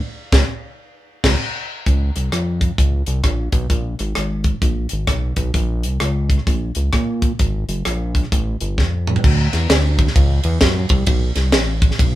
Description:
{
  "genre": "uptempo gospel",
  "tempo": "130 BPM",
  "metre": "4/4",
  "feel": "swing 63% on 8ths",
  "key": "Db major",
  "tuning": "A4 = 440 Hz",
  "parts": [
    { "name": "fat analog bass", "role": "bass", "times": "0.3-12.2 s", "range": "Gb1 to Bb2", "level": "-19 LUFS", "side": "equal", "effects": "none" },
    { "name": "tight funk drum kit", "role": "drums", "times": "0.3-12.1 s", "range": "crash cymbal, hi-hat, kick drum, ride cymbal, rim click, snare drum, toms", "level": "-17 LUFS", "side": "equal", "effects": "none" }
  ],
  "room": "light reverb",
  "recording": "band playing live in one room",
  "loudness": "-16 LUFS",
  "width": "side -14 dB against mid",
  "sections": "0.0-1.9 A section; 1.9-9.2 B section; 9.2-12.2 A section",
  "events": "band accent 0.0-1.9; drum fill 8.8-9.2",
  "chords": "none"
}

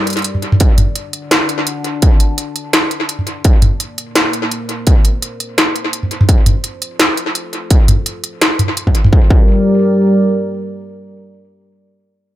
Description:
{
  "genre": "half-time drum and bass",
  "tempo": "169 BPM",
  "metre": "4/4",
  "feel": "swing 56% on 16ths, half-time",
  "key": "G minor",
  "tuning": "A4 = 439 Hz",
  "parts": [
    { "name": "dark analog pad", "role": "sustained chords", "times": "0.0-10.5 s", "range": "G3 to A5", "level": "-19 LUFS", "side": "equal", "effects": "chorus, sidechain pumping" },
    { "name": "industrial drum kit", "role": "drums", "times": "0.1-9.1 s", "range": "hi-hat, snare drum, toms", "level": "-14 LUFS", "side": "equal", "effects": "tape echo" },
    { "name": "electronic kick drum", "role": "drums", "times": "0.6-9.4 s", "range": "none", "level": "-10 LUFS", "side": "equal", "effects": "distortion" }
  ],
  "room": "light reverb, digital ambience",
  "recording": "echo-heavy mix",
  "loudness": "-11 LUFS",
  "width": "side -14 dB against mid",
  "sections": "0.0-9.1 A section; 9.1-10.5 B section",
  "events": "none",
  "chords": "0.0 Gm; 0.6 D; 3.4 Bbadd9; 6.3 F; 9.1 Gm"
}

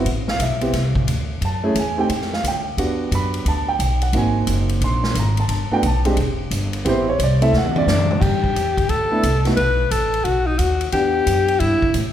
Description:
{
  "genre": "jazz, small-group swing and bop",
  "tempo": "177 BPM",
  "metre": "4/4",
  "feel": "swing 65% on 8ths",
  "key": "G major",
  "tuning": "A4 = 440 Hz",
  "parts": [
    { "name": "warm grand piano", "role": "accompaniment", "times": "0.0-11.9 s", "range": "Ab3 to C6", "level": "-22 LUFS", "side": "right 2 dB", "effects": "none" },
    { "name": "upright bass", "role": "bass", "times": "0.0-12.1 s", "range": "E1 to A2", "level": "-21 LUFS", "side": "equal", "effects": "none" },
    { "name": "swinging big-band drum kit", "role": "drums", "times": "0.1-12.0 s", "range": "crash cymbal, hi-hat, kick drum, ride cymbal, snare drum, toms", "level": "-25 LUFS", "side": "equal", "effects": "none" },
    { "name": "clear alto saxophone", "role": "melody", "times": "7.9-11.9 s", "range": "D4 to B4", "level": "-19 LUFS", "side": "left 3 dB", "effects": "none" }
  ],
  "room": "moderate scoring stage reverb, RT60 1.9 s",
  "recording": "recorded in a church or concert hall",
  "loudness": "-17 LUFS",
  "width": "side -10 dB against mid",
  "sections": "0.0-8.2 A section; 8.2-12.1 B section",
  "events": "drum fill 7.5-8.2",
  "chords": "0.1 Amadd9; 1.4 F#m9; 2.1 Dmadd11; 2.8 Em9; 4.1 Ab9; 5.5 Gmaj9; 6.2 Em; 6.8 Am7; 7.5 D; 8.2 G69; 9.6 B7; 10.9 Em9"
}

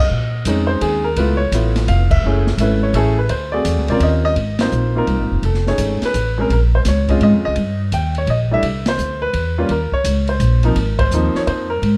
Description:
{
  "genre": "jazz piano trio",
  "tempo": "169 BPM",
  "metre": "3/4",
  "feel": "swing 65% on 8ths",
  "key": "Ab major from 4.4 s",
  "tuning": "A4 = 441 Hz",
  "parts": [
    { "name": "warm baby grand piano", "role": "melody", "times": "0.0-12.0 s", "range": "F3 to G5", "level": "-21 LUFS", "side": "equal", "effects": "none" },
    { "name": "upright bass", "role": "bass", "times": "0.0-12.0 s", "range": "F1 to Bb2", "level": "-20 LUFS", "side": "equal", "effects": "none" },
    { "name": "open jazz drum kit", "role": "drums", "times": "0.5-11.9 s", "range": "crash cymbal, hi-hat, kick drum, ride cymbal, snare drum", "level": "-27 LUFS", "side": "equal", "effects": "none" }
  ],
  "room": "light reverb",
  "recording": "dark, warm production",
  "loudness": "-17 LUFS",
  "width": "mono",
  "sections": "0.0-4.4 A section; 4.4-12.0 B section",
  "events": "band accent 2.1, 4.6, 8.8, 10.9",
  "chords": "0.1 Bbm11; 1.2 Db7alt; 2.2 Gbm9; 3.3 D7#11; 4.0 Ebsus2; 4.4 Ab69; 5.4 F7alt; 6.5 Bbm7; 7.6 Gm; 8.6 Cadd9; 9.7 Eb5; 10.8 Ab69"
}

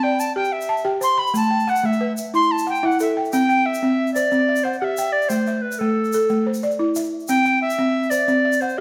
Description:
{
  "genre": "west african traditional, West African string and xylophone music",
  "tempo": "121 BPM (dotted quarters)",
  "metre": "12/8",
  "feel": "straight",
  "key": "C lydian",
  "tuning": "A4 = 440 Hz",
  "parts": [
    { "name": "tenor recorder", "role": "melody", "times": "0.0-8.8 s", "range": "A4 to C6", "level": "-23 LUFS", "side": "equal", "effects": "none" },
    { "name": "balafon", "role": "arpeggios", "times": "0.0-8.8 s", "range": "A3 to B5", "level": "-23 LUFS", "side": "equal", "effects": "none" },
    { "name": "egg shaker", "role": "percussion", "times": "0.2-8.7 s", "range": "none", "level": "-39 LUFS", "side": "equal", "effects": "none" }
  ],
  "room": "moderate recital hall reverb, RT60 1.5 s",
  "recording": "recorded in a church or concert hall",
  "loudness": "-20 LUFS",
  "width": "mono",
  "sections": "0.0-3.3 A section; 3.3-8.8 B section",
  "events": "recorder solo 0.0-3.3",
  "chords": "0.0 C; 1.3 A5; 3.3 C; 5.3 Am; 7.3 C"
}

